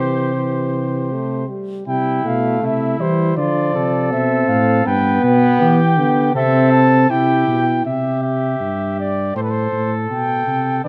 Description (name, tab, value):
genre	classical, imitative canzona for brass ensemble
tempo	80 BPM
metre	4/4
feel	straight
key	C major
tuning	A4 = 440 Hz
part	dark trumpet	melody	0.0-10.9 s	B4 to A5	-23 LUFS	equal	none
part	warm flugelhorn	second line	0.0-10.9 s	E4 to B4	-26 LUFS	equal	none
part	warm trombone	accompaniment	0.0-7.8 s	E3 to E4	-21 LUFS	equal	none
part	mellow tuba	bass	0.0-10.9 s	G2 to E3	-22 LUFS	equal	none
room	moderate recital hall reverb, RT60 1.8 s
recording	close, detailed microphones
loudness	-17 LUFS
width	mono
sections	0.0-1.9 A section; 1.9-7.9 B section; 7.9-10.9 A section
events	none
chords	0.0 C; 3.4 Dm; 4.9 G; 6.3 C; 9.4 Am